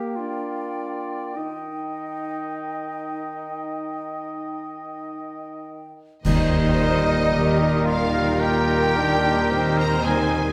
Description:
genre	classical, slow romantic movement for symphony orchestra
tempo	47-57 BPM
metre	4/4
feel	rubato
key	Eb major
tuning	A4 = 440 Hz
part	bright clarinet	second line	0.0-10.5 s	Eb4 to G4	-36 LUFS	equal	none
part	mellow hollow concert flute	second line	0.0-10.5 s	Eb5 to Bb5	-34 LUFS	equal	none
part	warm bassoon	accompaniment	0.0-10.5 s	Eb3 to D4	-34 LUFS	equal	none
part	dark French horn section	sustained chords	0.0-10.5 s	Bb3 to Eb4	-33 LUFS	equal	none
part	clear oboe	second line	0.2-10.5 s	Eb4 to Eb5	-33 LUFS	equal	none
part	clear symphonic violin section	melody	6.2-10.5 s	Eb5 to Bb5	-32 LUFS	equal	none
part	clash cymbals and concert bass drum	percussion	6.2-8.3 s	none	-31 LUFS	equal	none
part	timpani	percussion	6.2-7.8 s	Eb3	-28 LUFS	equal	none
part	rich symphonic violin section	second line	6.3-10.5 s	Bb4 to C5	-35 LUFS	equal	none
part	clear trombone section	sustained chords	6.3-10.5 s	Bb2 to G3	-33 LUFS	equal	none
part	bright trumpet section	stabs	6.3-10.5 s	Bb4	-31 LUFS	equal	none
part	rich symphonic cello section	bass	6.3-10.5 s	Eb3	-28 LUFS	equal	none
part	rich symphonic double bass section	bass	6.3-10.5 s	Eb2	-30 LUFS	equal	none
part	rich symphonic viola section	accompaniment	6.8-10.5 s	G3 to Eb4	-32 LUFS	equal	none
room	wet recital hall reverb, RT60 1.3 s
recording	none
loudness	-23 LUFS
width	mono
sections	0.0-6.3 A section; 6.3-10.5 A section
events	band accent 6.3-7.3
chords	0.2 Bb6; 1.4 Eb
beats	0.18 | 1.37 2.58 3.81 5.04 | 6.26 7.33 8.39 9.50

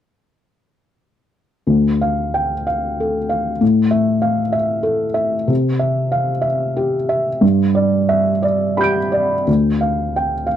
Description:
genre	neoclassical minimalist piano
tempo	56-65 BPM (dotted quarters)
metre	6/8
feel	rubato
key	D dorian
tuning	A4 = 440 Hz
part	felt-muted upright piano	solo	1.7-10.6 s	D2 to D7	-15 LUFS	equal	none
room	light reverb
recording	dry, close 1970s-style studio recording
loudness	-15 LUFS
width	side -10 dB against mid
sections	1.7-9.5 A section; 9.5-10.6 B section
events	none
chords	1.7 Dm; 3.6 A5; 5.5 C; 7.4 G; 9.5 Dm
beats	| 1.67 2.66 | 3.61 4.54 | 5.49 6.45 | 7.42 8.43 | 9.48 10.47

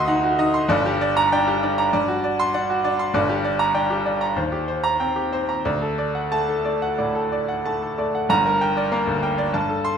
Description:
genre	classical, virtuoso piano study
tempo	90-100 BPM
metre	4/4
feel	rubato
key	G minor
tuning	A4 = 440 Hz
part	bright grand piano	solo	0.0-10.0 s	G1 to C6	-19 LUFS	equal	none
room	moderate recital hall reverb, RT60 1.3 s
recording	minimal, uncompressed stereo recording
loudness	-19 LUFS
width	side -7 dB against mid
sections	0.0-8.3 A section; 8.3-10.0 B section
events	none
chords	0.0 D7b9; 0.7 Gm; 1.9 D7/G; 3.1 Gm; 4.4 Eb6; 5.7 D; 8.3 Gm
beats	0.08 | 0.70 1.32 1.93 2.54 | 3.14 3.75 4.37 5.00 | 5.65 6.32 6.98 7.65 | 8.30 8.92 9.54

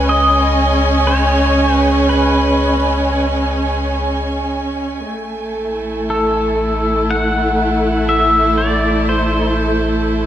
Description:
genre	ambient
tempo	60 BPM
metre	4/4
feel	straight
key	unclear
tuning	A4 = 439 Hz
part	pedal steel guitar	melody	0.0-10.3 s	A4 to F#5	-18 LUFS	left 1 dB	shimmer reverb, dub echo
part	rich studio string section	sustained chords	0.0-10.3 s	A3 to G#5	-16 LUFS	right 1 dB	shimmer reverb
part	warm sub bass	bass	0.0-10.3 s	A1 to C#2	-20 LUFS	equal	none
room	wet spring reverb, RT60 2.3 s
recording	echo-heavy mix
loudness	-13 LUFS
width	side -11 dB against mid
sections	0.0-10.3 A section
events	filter sweep on string section 0.0-10.3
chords	0.0 C#5; 5.1 Am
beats	0.08 | 1.08 2.08 3.08 4.08 | 5.08 6.08 7.08 8.08 | 9.08 10.08

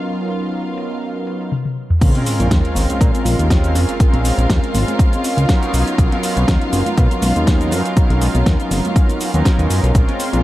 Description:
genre	nu-disco, nu disco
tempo	121 BPM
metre	4/4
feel	swing 54% on 16ths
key	unclear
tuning	A4 = 440 Hz
part	mellow synth brass	accompaniment	0.0-10.4 s	F#3 to A#4	-21 LUFS	right 1 dB	chorus, sidechain pumping, analog delay
part	rich symphonic string section	sustained chords	0.0-10.4 s	F4 to F5	-26 LUFS	left 1 dB	sidechain pumping
part	pop drum kit	drums	0.0-10.4 s	crash cymbal, hi-hat, shaker, snare drum, toms	-23 LUFS	equal	overdrive, low-pass filter on hats, low-pass filter on perc, low-pass filter on toms, low-pass filter on cymbals, low-pass filter on snare, low-pass filter on room
part	fat analog bass	bass	2.0-10.4 s	F#1 to B2	-17 LUFS	equal	none
part	electronic kick drum	drums	2.0-10.1 s	none	-14 LUFS	equal	overdrive
part	sub drop	sound effects	2.0-4.0 s	none	-23 LUFS	equal	none
part	congas	percussion	2.2-10.4 s	none	-27 LUFS	equal	none
room	light reverb, digital ambience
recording	dark, warm production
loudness	-14 LUFS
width	side -15 dB against mid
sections	0.0-2.0 A section; 2.0-10.4 B section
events	drum fill 1.5-2.0; drop 2.0-10.4; impact 2.0-4.0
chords	0.0 Bmaj9; 2.0 Bbm9; 5.7 Bmaj9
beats	| 0.03 0.53 1.02 1.52 | 2.02 2.51 3.01 3.50 | 4.00 4.50 4.99 5.49 | 5.98 6.48 6.97 7.47 | 7.97 8.46 8.96 9.46 | 9.95

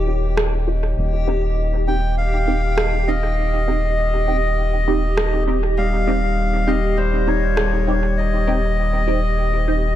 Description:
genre	ambient dub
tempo	100 BPM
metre	4/4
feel	straight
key	unclear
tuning	A4 = 440 Hz
part	deep dark ambient pad	sustained chords	0.0-10.0 s	Eb4 to G5	-30 LUFS	left 2 dB	chorus, built-in reverb
part	round analog bass	bass	0.0-10.0 s	Eb1	-20 LUFS	equal	none
part	backwards swelling texture	texture	0.0-10.0 s	G4	-29 LUFS	right 2 dB	built-in reverb
part	filtered dub chord stab	stabs	0.1-9.9 s	C4 to G4	-26 LUFS	right 2 dB	phaser, ensemble chorus, dub echo
part	electronic rim click	drums	0.4-7.7 s	none	-25 LUFS	right 1 dB	overdrive, dub echo
part	melodica	melody	1.9-9.9 s	C5 to G5	-23 LUFS	left 2 dB	dub echo
part	Celtic harp	arpeggios	5.8-10.0 s	G3 to G4	-26 LUFS	left 4 dB	tape echo
room	light reverb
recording	none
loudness	-17 LUFS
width	side -12 dB against mid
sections	0.0-10.0 A section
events	filter sweep on synth stab 0.0-10.0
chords	0.0 Eb9; 1.0 Cm/Eb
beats	0.38 | 0.98 1.58 2.18 2.78 | 3.38 3.98 4.58 5.18 | 5.78 6.38 6.98 7.58 | 8.18 8.78 9.38

